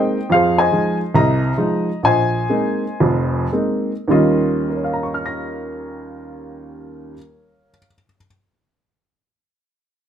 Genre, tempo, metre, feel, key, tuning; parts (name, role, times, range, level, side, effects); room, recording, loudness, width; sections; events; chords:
solo jazz; 102-145 BPM; 4/4; swing 65% on 8ths; Eb mixolydian; A4 = 440 Hz
warm upright piano; solo; 0.0-8.3 s; F1 to Bb6; -17 LUFS; equal
light reverb; -16 LUFS; side -9 dB against mid
0.0-4.1 A section; 4.1-8.8 B section
slowing down 0.3-4.1
0.3 Fm7; 2.0 Bb9sus4; 4.1 Eb9